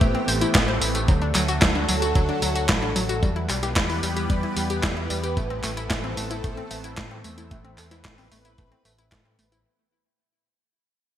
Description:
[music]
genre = italo disco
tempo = 112 BPM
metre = 4/4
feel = straight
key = A dorian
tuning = A4 = 440 Hz
[part]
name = lush unison pad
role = sustained chords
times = 0.0-9.6 s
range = D3 to B4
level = -28 LUFS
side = right 1 dB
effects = chorus, phaser
[part]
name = analog pluck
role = arpeggios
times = 0.0-9.6 s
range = F#3 to C5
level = -29 LUFS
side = left 2 dB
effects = chorus, digital delay
[part]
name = overdriven fingered electric bass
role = bass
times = 0.0-9.6 s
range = A1 to A2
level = -29 LUFS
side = equal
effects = none
[part]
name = electronic kick drum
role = drums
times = 0.0-9.2 s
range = none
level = -23 LUFS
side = equal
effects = none
[part]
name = gated 80s digital drum machine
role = drums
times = 0.0-9.6 s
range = handclaps, hi-hat, snare drum, tambourine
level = -26 LUFS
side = equal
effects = gated reverb, gated reverb snare
[sound]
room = moderate lush hall reverb, RT60 1.9 s, digital ambience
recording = bright 1980s-style digital production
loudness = -21 LUFS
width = side -11 dB against mid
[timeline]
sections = 0.0-9.7 A section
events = fade-out 1.1-9.7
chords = 0.0 Amadd9; 1.1 D; 3.2 Em; 5.4 Amadd9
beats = 0.01 0.55 | 1.08 1.62 2.15 2.69 | 3.23 3.76 4.30 4.83 | 5.37 5.90 6.44 6.98 | 7.51 8.05 8.58 9.12

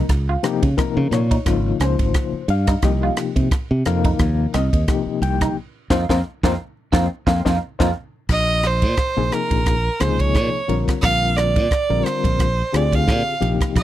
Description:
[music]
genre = electric jazz fusion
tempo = 88 BPM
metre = 4/4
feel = swing 56% on 16ths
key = unclear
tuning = A4 = 440 Hz
[part]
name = overdriven reed electric piano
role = accompaniment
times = 0.0-13.8 s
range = C3 to G5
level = -23 LUFS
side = left 8 dB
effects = fast tremolo
[part]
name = clean electric guitar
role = stabs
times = 0.0-7.9 s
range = C4 to F4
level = -25 LUFS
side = right 6 dB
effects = analog chorus
[part]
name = modern bright fingered electric bass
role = bass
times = 0.1-13.8 s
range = Ab1 to Db3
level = -20 LUFS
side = right 1 dB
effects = none
[part]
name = crisp fusion drum kit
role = drums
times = 0.1-13.8 s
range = crash cymbal, kick drum, ride cymbal, rim click, snare drum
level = -21 LUFS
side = right 1 dB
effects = none
[part]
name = clear violin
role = melody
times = 8.3-13.8 s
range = Bb4 to F5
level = -21 LUFS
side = right 3 dB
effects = none
[sound]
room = little or no reverb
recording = dry, close 1970s-style studio recording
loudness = -17 LUFS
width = side -13 dB against mid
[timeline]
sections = 0.0-8.3 A section; 8.3-13.8 B section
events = drum fill 5.6-8.3; band accent 5.6-8.3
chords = 0.1 Dbmaj9; 2.8 Eb69/C; 5.6 F7sus4; 8.3 Bbm11; 10.7 Bb9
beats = | 0.10 0.79 1.47 2.15 | 2.83 3.52 4.20 4.88 | 5.56 6.25 6.93 7.61 | 8.29 8.98 9.66 10.34 | 11.03 11.71 12.39 13.07 | 13.75

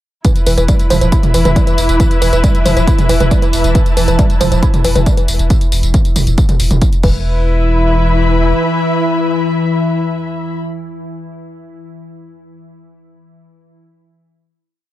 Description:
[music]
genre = driving peak-time techno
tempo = 137 BPM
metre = 4/4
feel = straight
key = unclear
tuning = A4 = 442 Hz
[part]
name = woody wave-folded pluck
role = riff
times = 0.2-7.4 s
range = E3 to E4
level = -18 LUFS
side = right 1 dB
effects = chorus, tube saturation, sidechain pumping, digital delay
[part]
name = deep dark ambient pad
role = drone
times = 0.9-10.2 s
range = E3 to E4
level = -20 LUFS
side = left 2 dB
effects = chorus, built-in reverb, sidechain pumping
[part]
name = electronic kick drum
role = drums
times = 0.2-7.1 s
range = none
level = -13 LUFS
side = equal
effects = none
[part]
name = punchy analog drum machine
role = drums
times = 0.2-7.1 s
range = crash cymbal, hi-hat, tambourine, toms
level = -20 LUFS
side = equal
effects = none
[part]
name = muted studio string section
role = texture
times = 0.2-10.6 s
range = E4 to B5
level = -19 LUFS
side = left 1 dB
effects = sidechain pumping
[part]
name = warm sub bass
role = bass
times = 0.5-8.5 s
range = E1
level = -15 LUFS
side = equal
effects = tube saturation, sidechain pumping, low-pass filter
[sound]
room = little or no reverb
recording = none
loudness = -10 LUFS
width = side -14 dB against mid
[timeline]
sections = 0.2-7.3 drop; 7.3-10.8 final chord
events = drop 0.2-7.3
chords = 0.2 E5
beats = | 0.25 0.68 1.12 1.56 | 2.00 2.44 2.87 3.31 | 3.75 4.19 4.63 5.06 | 5.50 5.94 6.38 6.82 | 7.25 7.69 8.13 8.57 | 9.01 9.44 9.88 10.32

